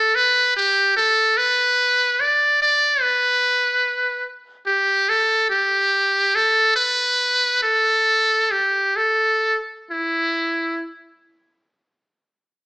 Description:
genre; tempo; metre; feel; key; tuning
rock; 58-73 BPM; 4/4; straight; unclear; A4 = 440 Hz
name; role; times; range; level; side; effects
trumpet with metal mute; melody; 0.0-10.8 s; E4 to D5; -16 LUFS; equal; none
room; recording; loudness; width
moderate large studio reverb, RT60 1.1 s; band playing live in one room, small speaker sound; -16 LUFS; side -34 dB against mid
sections
0.0-11.9 A section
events
slowing down 4.7-11.9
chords
none

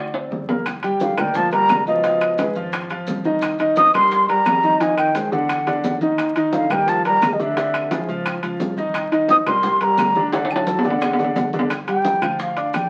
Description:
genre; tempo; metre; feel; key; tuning
Afro-Cuban jazz; 174 BPM; 4/4; straight; G minor; A4 = 440 Hz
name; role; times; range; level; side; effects
breathy mellow concert flute; melody; 0.0-12.9 s; D5 to Eb6; -20 LUFS; equal; none
warm concert grand piano; accompaniment; 0.0-12.9 s; D3 to D6; -25 LUFS; equal; none
fingered electric bass; bass; 0.0-12.9 s; G1 to G2; -36 LUFS; equal; none
bongos; percussion; 0.1-12.9 s; none; -34 LUFS; equal; none
congas; percussion; 0.1-12.9 s; none; -32 LUFS; equal; none
timbales; percussion; 0.1-12.9 s; none; -28 LUFS; equal; none
claves; percussion; 0.7-12.9 s; none; -38 LUFS; equal; none
maracas; percussion; 0.7-12.9 s; none; -46 LUFS; equal; none
mellow trombone; second line; 1.0-11.5 s; B2 to C4; -32 LUFS; equal; none
room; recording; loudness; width
moderate studio reverb, RT60 0.8 s; very old 78 rpm record, vinyl crackle; -19 LUFS; mono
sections
0.7-11.7 A section; 11.7-12.9 B section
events
drum fill 0.0-0.7, 10.3-11.7; flute solo 11.7-12.9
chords
0.0 D7; 0.7 Gm7; 2.0 C#9; 3.4 Cm7; 4.8 Fm9; 5.5 Esus2; 6.2 Ebmaj7; 7.6 Dm7b5; 8.3 C#add9; 9.0 Cm9; 10.3 D; 11.7 Gm7

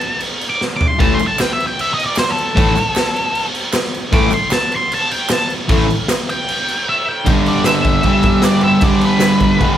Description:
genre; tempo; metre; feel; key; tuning
garage rock duo or trio; 153 BPM; 4/4; straight; A minor; A4 = 440 Hz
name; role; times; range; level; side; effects
octave-fuzz lead guitar; melody; 0.0-9.8 s; A4 to D6; -18 LUFS; equal; distortion
raw garage drum kit; drums; 0.0-9.7 s; crash cymbal, kick drum, snare drum, toms; -17 LUFS; equal; none
fuzz guitar; riff; 1.0-9.8 s; G2 to A3; -15 LUFS; equal; distortion
group handclap; percussion; 1.2-9.3 s; none; -28 LUFS; right 4 dB; none
room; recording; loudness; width
light reverb; band playing live in one room; -13 LUFS; side -10 dB against mid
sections
0.0-7.3 A section; 7.3-9.8 B section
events
lead electric guitar solo 0.0-7.3; drum fill 0.6-1.0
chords
0.0 A5; 7.3 G

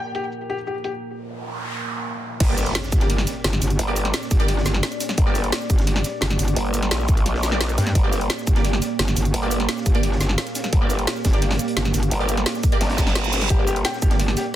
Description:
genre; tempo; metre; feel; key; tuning
dark technical drum and bass; 173 BPM; 4/4; straight; G minor; A4 = 441 Hz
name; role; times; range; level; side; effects
deep dark ambient pad; sustained chords; 0.0-14.6 s; Bb3 to F5; -30 LUFS; right 3 dB; chorus, built-in reverb, sidechain pumping
felt-muted upright piano; arpeggios; 0.0-0.9, 13.5-14.4 s; G4 to G5; -27 LUFS; left 4 dB; sidechain pumping, tape echo
drum and bass drum kit; drums; 0.1-14.4 s; crash cymbal, hi-hat, shaker, snare drum; -25 LUFS; equal; low-pass filter on hats, low-pass filter on perc, low-pass filter on cymbals, soft clipping on snare, low-pass filter on snare, low-pass filter on room
noise sweep, impact and reverse cymbal; sound effects; 1.2-3.8, 12.9-13.5 s; none; -29 LUFS; right 2 dB; none
growl bass; bass; 2.4-13.8 s; G1 to Bb1; -23 LUFS; equal; chorus, overdrive, sidechain pumping
crunchy breakbeat drum kit; drums; 2.4-14.5 s; hi-hat, snare drum; -34 LUFS; equal; high-pass filter on hats, high-pass filter on snare, high-pass filter on room
electronic kick drum; drums; 2.4-14.1 s; none; -19 LUFS; equal; none
orchestra-hit-like synth stab; stabs; 2.5-5.3, 7.5-14.6 s; Bb3 to D5; -29 LUFS; equal; built-in reverb, phaser, tape echo
metallic wobble bass; bass; 2.9-14.4 s; G1 to G2; -22 LUFS; equal; chorus, tube saturation
room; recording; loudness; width
little or no reverb; dense, heavily limited modern master; -19 LUFS; side -12 dB against mid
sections
0.0-2.4 A section; 2.4-14.6 B section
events
break 1.0-2.4; noise sweep 1.2-2.4; drop 2.4-14.6; impact 2.4-3.8; reverse cymbal 12.9-13.5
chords
0.0 N.C.; 2.4 Gm

